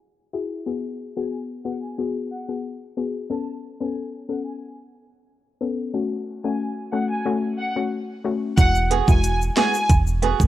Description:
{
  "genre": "dancehall",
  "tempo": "91 BPM",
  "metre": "4/4",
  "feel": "straight",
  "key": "unclear",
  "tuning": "A4 = 440 Hz",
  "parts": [
    { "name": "soft round pluck", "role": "accompaniment", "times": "0.3-9.8 s", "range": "G#3 to A4", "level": "-26 LUFS", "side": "left 5 dB", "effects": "chorus, sidechain pumping, cassette tape" },
    { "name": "clear studio violin section", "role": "melody", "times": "1.2-9.8 s", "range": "F#5 to A5", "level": "-27 LUFS", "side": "equal", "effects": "cassette tape" },
    { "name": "solid FM bass", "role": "bass", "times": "8.6-10.5 s", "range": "E1 to G#1", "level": "-20 LUFS", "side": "right 1 dB", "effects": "none" },
    { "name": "island pop drum kit", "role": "drums", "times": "8.6-10.5 s", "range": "hi-hat, kick drum, snare drum", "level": "-18 LUFS", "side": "right 1 dB", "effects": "cassette tape" },
    { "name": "egg shaker", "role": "percussion", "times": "8.6-10.5 s", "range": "none", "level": "-37 LUFS", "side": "left 7 dB", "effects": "none" },
    { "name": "flamenco guitar", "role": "arpeggios", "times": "8.9-10.4 s", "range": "B3 to G#4", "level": "-22 LUFS", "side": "right 10 dB", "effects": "cassette tape" }
  ],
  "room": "small room ambience",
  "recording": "home recording on cassette, low-pass filter",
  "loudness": "-21 LUFS",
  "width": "side -13 dB against mid",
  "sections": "0.0-8.6 A section; 8.6-10.5 B section",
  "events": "filter sweep 0.0-8.6",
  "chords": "0.0 Eadd9; 0.7 G#m7; 3.3 Aadd9; 5.9 F#m; 8.6 Eadd9"
}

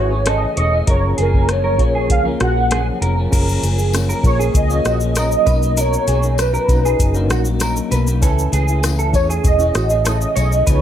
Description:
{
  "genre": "indie pop, bedroom pop",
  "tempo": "98 BPM",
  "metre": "4/4",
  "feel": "straight",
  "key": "F# major",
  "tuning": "A4 = 440 Hz",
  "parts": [
    { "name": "warm velvety synth lead", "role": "melody", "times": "0.0-10.8 s", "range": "A#4 to F#5", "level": "-19 LUFS", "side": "right 2 dB", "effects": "ensemble chorus, ping-pong delay" },
    { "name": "electric guitar through a small old amp", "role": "second line", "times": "0.0-10.8 s", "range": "F#4 to C#5", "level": "-25 LUFS", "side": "right 4 dB", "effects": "ensemble chorus, plate reverb, ping-pong delay" },
    { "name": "electric guitar through a small old amp", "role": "accompaniment", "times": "0.0-10.8 s", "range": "F#2 to G#4", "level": "-26 LUFS", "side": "left 5 dB", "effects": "analog chorus, warbly pitch drift" },
    { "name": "reed electric piano", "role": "accompaniment", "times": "0.0-10.8 s", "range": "E#3 to A#5", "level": "-26 LUFS", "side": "right 1 dB", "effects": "fast tremolo, cassette tape, plate reverb" },
    { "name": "vintage muted fingered electric bass", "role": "bass", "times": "0.0-10.8 s", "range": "E1 to E2", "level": "-18 LUFS", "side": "equal", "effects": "none" },
    { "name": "soft vintage rhythm box", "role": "drums", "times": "0.3-10.8 s", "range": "crash cymbal, hi-hat, kick drum, rim click, shaker", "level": "-19 LUFS", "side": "equal", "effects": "overdrive" },
    { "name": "tambourine", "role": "percussion", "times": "3.3-10.8 s", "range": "none", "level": "-35 LUFS", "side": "left 11 dB", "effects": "none" }
  ],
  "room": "light reverb",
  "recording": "none",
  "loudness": "-14 LUFS",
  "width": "side -10 dB against mid",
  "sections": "0.0-3.3 A section; 3.3-10.8 A section",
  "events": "none",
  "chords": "0.0 Amaj7; 0.9 F#maj7; 5.5 Bmaj7; 8.2 Amaj7/C#"
}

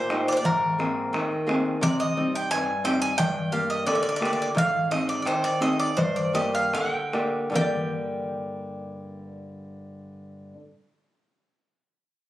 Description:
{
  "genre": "greek folk, Greek bouzouki band",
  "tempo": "70-87 BPM",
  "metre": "2/4",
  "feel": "straight",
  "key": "G phrygian",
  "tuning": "A4 = 440 Hz",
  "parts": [
    { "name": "Greek bouzouki", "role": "melody", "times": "0.0-10.6 s", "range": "Bb4 to Ab5", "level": "-27 LUFS", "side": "equal", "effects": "none" },
    { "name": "nylon-string guitar", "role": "accompaniment", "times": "0.0-10.6 s", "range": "G2 to D5", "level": "-27 LUFS", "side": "equal", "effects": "none" },
    { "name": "darbuka", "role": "percussion", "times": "0.1-8.0 s", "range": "none", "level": "-30 LUFS", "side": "equal", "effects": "none" }
  ],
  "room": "moderate studio reverb, RT60 0.6 s",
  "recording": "recorded on a phone in the room, club reverb",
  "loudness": "-22 LUFS",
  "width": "side -14 dB against mid",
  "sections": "0.0-7.6 A section; 7.6-11.0 B section",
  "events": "slowing down 4.6-7.6",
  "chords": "0.4 Abadd9; 1.8 Cm; 3.2 Gm; 4.6 Ab; 6.0 Gm"
}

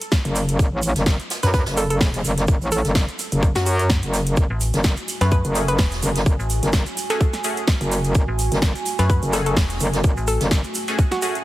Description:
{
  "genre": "bass house",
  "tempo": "127 BPM",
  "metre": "4/4",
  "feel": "swing 55% on 16ths",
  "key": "F# minor",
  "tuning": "A4 = 440 Hz",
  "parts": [
    { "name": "hollow square pluck", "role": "melody", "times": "0.0-11.3 s", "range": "F#4 to B4", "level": "-27 LUFS", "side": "equal", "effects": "chorus, dub echo" },
    { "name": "big-room dance drum kit", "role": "drums", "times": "0.0-11.4 s", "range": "hi-hat, snare drum", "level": "-26 LUFS", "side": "equal", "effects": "none" },
    { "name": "tube shaker", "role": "percussion", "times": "0.0-11.4 s", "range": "none", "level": "-33 LUFS", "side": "right 4 dB", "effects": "none" },
    { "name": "electronic kick drum", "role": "drums", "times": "0.1-11.1 s", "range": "none", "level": "-18 LUFS", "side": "equal", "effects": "overdrive" },
    { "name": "jazz brush drum kit", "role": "drums", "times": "0.1-11.3 s", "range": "hi-hat, snare drum", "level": "-34 LUFS", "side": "right 2 dB", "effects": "sidechain pumping on hats, high-pass filter on hats, high-pass filter on snare, high-pass filter on room" },
    { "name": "metallic wobble bass", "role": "bass", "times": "0.3-10.6 s", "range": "E1 to F#2", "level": "-20 LUFS", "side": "equal", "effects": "chorus, overdrive, sidechain pumping" },
    { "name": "dark analog pad", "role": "sustained chords", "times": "4.4-11.4 s", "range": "A3 to G#5", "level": "-30 LUFS", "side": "right 3 dB", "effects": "lush chorus, sidechain pumping" },
    { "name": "metallic FM bass", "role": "bass", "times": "4.5-10.4 s", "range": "E1 to F#2", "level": "-21 LUFS", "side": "equal", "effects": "tube saturation, sidechain pumping" },
    { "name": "band-passed chord stab", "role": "stabs", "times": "5.2-11.4 s", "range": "A3 to G#4", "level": "-30 LUFS", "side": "left 1 dB", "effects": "phaser, analog chorus, sidechain pumping, dub echo" }
  ],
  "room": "light reverb, small room ambience",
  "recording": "heavily compressed radio sound",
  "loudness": "-18 LUFS",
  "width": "side -16 dB against mid",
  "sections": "0.0-11.4 A section",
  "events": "none",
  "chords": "0.0 F#madd9"
}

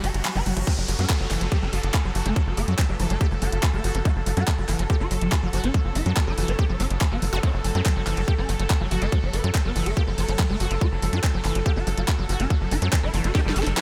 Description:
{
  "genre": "psychedelic trance",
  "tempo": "142 BPM",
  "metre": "4/4",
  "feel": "straight",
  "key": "F# phrygian",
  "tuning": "A4 = 441 Hz",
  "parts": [
    { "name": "swarming rave lead", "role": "melody", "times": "0.0-13.8 s", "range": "F#3 to B4", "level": "-33 LUFS", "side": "equal", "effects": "chorus, phaser, sidechain pumping, analog delay" },
    { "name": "bubbling stepped-filter texture", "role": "sustained chords", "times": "0.0-13.8 s", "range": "F#4 to A4", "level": "-36 LUFS", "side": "equal", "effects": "chorus, built-in reverb, sidechain pumping" },
    { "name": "liquid acid bass", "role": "riff", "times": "0.0-13.8 s", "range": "E3 to G4", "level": "-35 LUFS", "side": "equal", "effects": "chorus, cassette tape, sidechain pumping, tape echo" },
    { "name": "tight sequencer bass", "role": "bass", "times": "0.0-13.7 s", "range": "F#1 to F#2", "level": "-28 LUFS", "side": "equal", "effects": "none" },
    { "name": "garage drum kit", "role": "drums", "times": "0.0-13.8 s", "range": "crash cymbal, handclaps, hi-hat, snare drum", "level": "-33 LUFS", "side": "equal", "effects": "overdrive" },
    { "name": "riser, downlifter and zap", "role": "sound effects", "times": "0.0-4.1, 7.3-7.4 s", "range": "none", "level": "-40 LUFS", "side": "equal", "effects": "none" },
    { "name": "electronic kick drum", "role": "drums", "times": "0.7-13.4 s", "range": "none", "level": "-24 LUFS", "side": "equal", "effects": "overdrive" }
  ],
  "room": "light reverb, digital ambience",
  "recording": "none",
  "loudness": "-23 LUFS",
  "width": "mono",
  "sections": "0.7-13.8 A section",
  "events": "break 0.0-0.7; riser 0.0-0.7; drop 0.7-13.8; drum fill 13.3-13.8",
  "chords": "0.0 N.C.; 0.7 F#m"
}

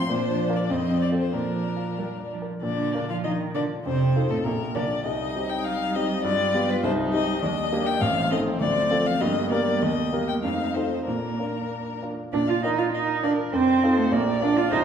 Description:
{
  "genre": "quick classical-period movement for piano quartet",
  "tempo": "92-103 BPM",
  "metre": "2/4",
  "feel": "rubato",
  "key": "Bb major",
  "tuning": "A4 = 440 Hz",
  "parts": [
    { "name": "rich violin", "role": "melody", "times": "0.0-14.8 s", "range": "A4 to C6", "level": "-28 LUFS", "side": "left 4 dB", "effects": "none" },
    { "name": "rich cello", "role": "second line", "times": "0.0-14.8 s", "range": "A2 to F4", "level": "-26 LUFS", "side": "right 3 dB", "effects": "none" },
    { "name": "clear baby grand piano", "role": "accompaniment", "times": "0.0-14.8 s", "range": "A1 to D5", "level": "-27 LUFS", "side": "equal", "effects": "none" },
    { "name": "warm viola", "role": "accompaniment", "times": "0.0-14.8 s", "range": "A3 to D5", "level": "-31 LUFS", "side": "right 1 dB", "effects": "none" }
  ],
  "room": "wet recital hall reverb, RT60 1.3 s",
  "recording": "heard from further back in the room",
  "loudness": "-22 LUFS",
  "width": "side -8 dB against mid",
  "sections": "0.0-2.6 A section; 2.6-12.3 B section; 12.3-14.8 B section",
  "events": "none",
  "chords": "0.1 Bb; 0.7 F7; 1.3 Bb; 3.9 F7; 4.5 Bb; 5.0 Cm; 6.2 G7; 6.8 Cm; 7.4 Ebmaj7; 8.0 Adim; 8.6 Dm7; 9.2 Gm; 9.8 Eb; 10.4 F7; 11.1 Bb; 13.5 F7; 14.1 Bb"
}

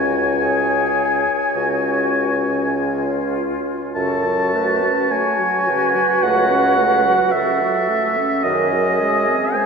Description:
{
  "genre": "classical, slow romantic movement for wind quintet",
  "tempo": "49-55 BPM",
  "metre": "4/4",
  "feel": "rubato",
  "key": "F# minor",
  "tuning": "A4 = 441 Hz",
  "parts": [
    { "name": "concert flute", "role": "melody", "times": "0.0-9.7 s", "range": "E#4 to G#4", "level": "-24 LUFS", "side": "left 5 dB", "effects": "none" },
    { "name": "warm oboe", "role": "second line", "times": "0.0-9.7 s", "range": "D#5 to A5", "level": "-19 LUFS", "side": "equal", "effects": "none" },
    { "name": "warm French horn", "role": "accompaniment", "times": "0.0-9.7 s", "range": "C#3 to C#4", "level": "-26 LUFS", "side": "left 1 dB", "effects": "none" },
    { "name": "warm clarinet", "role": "accompaniment", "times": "0.0-9.7 s", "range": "G#4 to C#5", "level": "-24 LUFS", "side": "right 5 dB", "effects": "none" },
    { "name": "clear bassoon", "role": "bass", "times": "0.0-9.4 s", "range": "C#2 to F#2", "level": "-23 LUFS", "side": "right 2 dB", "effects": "none" }
  ],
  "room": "wet cathedral reverb, RT60 6.1 s",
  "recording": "recorded in a church or concert hall",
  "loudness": "-16 LUFS",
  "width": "side -5 dB against mid",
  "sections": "0.0-9.7 A section",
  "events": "none",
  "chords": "0.0 C#5; 4.0 F#m; 8.4 G#7/F#"
}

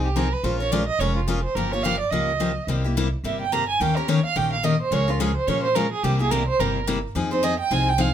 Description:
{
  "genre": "acoustic string swing (jazz manouche)",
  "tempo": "215 BPM",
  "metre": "4/4",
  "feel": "swing 59% on 8ths",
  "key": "unclear",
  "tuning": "A4 = 440 Hz",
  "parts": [
    { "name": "warm violin", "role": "second line", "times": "0.0-8.1 s", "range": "F4 to Bb5", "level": "-24 LUFS", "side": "right 5 dB", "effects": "none" },
    { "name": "picked steel-string acoustic guitar", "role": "accompaniment", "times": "0.0-8.1 s", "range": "C3 to Bb4", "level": "-24 LUFS", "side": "left 4 dB", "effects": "none" },
    { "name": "upright bass", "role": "bass", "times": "0.0-8.1 s", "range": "F1 to Bb2", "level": "-26 LUFS", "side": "right 1 dB", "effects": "none" }
  ],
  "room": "moderate studio reverb, RT60 0.5 s",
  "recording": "minimal, uncompressed stereo recording",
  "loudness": "-20 LUFS",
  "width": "side -9 dB against mid",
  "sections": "0.0-8.1 A section",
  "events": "violin solo 0.0-8.1",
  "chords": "0.4 Bbm7; 1.6 Gm7b5; 2.7 C7; 3.8 Eb7; 4.9 Bbm7/Db; 6.0 C7; 7.2 Fm7"
}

